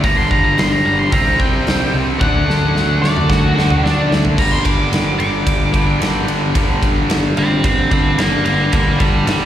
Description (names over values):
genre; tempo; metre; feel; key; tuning
blues rock power trio and southern rock; 110 BPM; 4/4; straight; G minor; A4 = 440 Hz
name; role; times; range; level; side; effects
octave-fuzz lead guitar; melody; 0.0-9.5 s; D4 to D6; -19 LUFS; right 1 dB; distortion
tight distorted guitar; riff; 0.0-9.5 s; G2 to D4; -18 LUFS; equal; distortion, slapback echo
fuzz picked electric bass; bass; 0.0-9.5 s; G1 to D2; -19 LUFS; equal; overdrive
huge arena drum kit; drums; 0.0-9.4 s; crash cymbal, hi-hat, kick drum, ride cymbal, snare drum, toms; -18 LUFS; equal; none
room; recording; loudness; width
light reverb; live gig heard through the venue's PA, recital hall reverb; -13 LUFS; side -11 dB against mid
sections
0.0-4.4 A section; 4.4-9.5 A section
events
lead electric guitar solo 0.0-9.5; drum fill 2.2-4.4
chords
0.0 G5; 1.1 C5; 2.2 D; 4.4 G5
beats
| 0.04 0.58 1.13 1.67 | 2.21 2.75 3.30 3.84 | 4.38 4.93 5.47 6.01 | 6.56 7.10 7.65 8.19 | 8.73 9.28